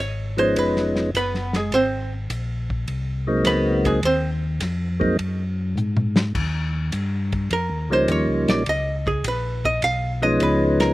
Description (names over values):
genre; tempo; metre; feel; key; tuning
soul jazz organ trio; 104 BPM; 4/4; swing 69% on 8ths; unclear; A4 = 441 Hz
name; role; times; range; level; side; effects
archtop guitar, miked and amplified; accompaniment; 0.0-10.9 s; Ab3 to F5; -22 LUFS; right 2 dB; none
mellow tonewheel organ; bass; 0.0-10.9 s; F1 to Ab2; -25 LUFS; left 1 dB; chorus vibrato, slow rotary speaker
percussive tonewheel organ; melody; 0.4-10.9 s; F3 to Eb4; -20 LUFS; equal; slow rotary speaker
warm soul drum kit; drums; 0.4-10.9 s; crash cymbal, hi-hat, kick drum, ride cymbal, snare drum, toms; -26 LUFS; left 1 dB; none
room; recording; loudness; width
little or no reverb; recorded outdoors, with no room sound; -20 LUFS; side -17 dB against mid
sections
0.0-10.9 A section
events
hollow-body jazz guitar solo 0.0-10.9; drum fill 5.8-6.4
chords
0.0 Db7; 1.7 Ab7; 6.4 Eb7; 8.7 Db7